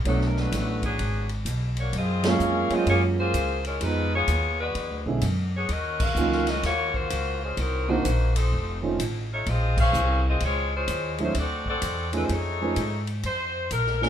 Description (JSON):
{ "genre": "jazz, big band swing", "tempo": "127 BPM", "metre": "4/4", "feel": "swing 65% on 8ths", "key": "unclear", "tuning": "A4 = 439 Hz", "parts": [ { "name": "upright bass", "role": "bass", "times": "0.0-14.1 s", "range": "F1 to G#2", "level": "-26 LUFS", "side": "equal", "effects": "none" }, { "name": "bright saxophone section", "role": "melody", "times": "0.1-14.1 s", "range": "F3 to F5", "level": "-27 LUFS", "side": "left 2 dB", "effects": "none" }, { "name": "warm grand piano", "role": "accompaniment", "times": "0.1-14.1 s", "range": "D3 to Db5", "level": "-27 LUFS", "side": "right 4 dB", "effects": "none" }, { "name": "swinging big-band drum kit", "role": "drums", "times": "0.1-14.1 s", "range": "crash cymbal, hi-hat, kick drum, ride cymbal, snare drum", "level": "-33 LUFS", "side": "equal", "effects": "none" } ], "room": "light reverb", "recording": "minimal, uncompressed stereo recording", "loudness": "-23 LUFS", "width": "side -9 dB against mid", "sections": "0.0-13.2 A section", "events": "band accent 2.2, 5.9, 9.7", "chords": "0.0 Cbm7; 1.0 Abm7b5; 1.9 Gbmaj9; 3.8 Fm7b5; 4.8 E13; 5.7 Ebm9; 7.6 Cm7b5; 8.5 F7b13; 9.5 Bbm9; 11.3 D9; 12.3 F7alt; 13.2 Bbsus2", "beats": "| 0.04 0.52 0.99 1.46 | 1.93 2.40 2.87 3.34 | 3.81 4.28 4.75 5.22 | 5.69 6.17 6.64 7.11 | 7.58 8.05 8.52 8.99 | 9.46 9.94 10.41 10.88 | 11.35 11.82 12.29 12.77 | 13.24 13.71" }